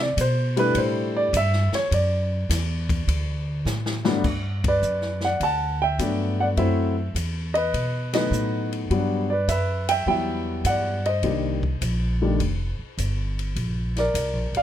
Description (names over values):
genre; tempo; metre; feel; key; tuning
jazz piano trio; 103 BPM; 4/4; swing 68% on 8ths; G major from 4.2 s; A4 = 440 Hz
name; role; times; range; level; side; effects
warm grand piano; melody; 0.0-14.6 s; G2 to A5; -23 LUFS; equal; none
upright bass; bass; 0.0-14.6 s; F1 to C3; -25 LUFS; equal; none
open jazz drum kit; drums; 0.2-14.6 s; crash cymbal, hi-hat, kick drum, ride cymbal, snare drum; -32 LUFS; left 2 dB; none
room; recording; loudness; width
little or no reverb; close, detailed microphones; -21 LUFS; side -11 dB against mid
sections
0.0-4.2 A section; 4.2-14.6 B section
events
grand piano solo 0.0-4.2; drum fill 3.7-4.2; band accent 4.5, 8.0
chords
0.0 C69; 1.9 Dadd9; 3.1 D5; 4.2 Gmaj9; 6.6 F#m7b5; 7.7 B7; 8.9 Em9; 11.2 Cm9; 12.4 Fsus2; 13.6 Bb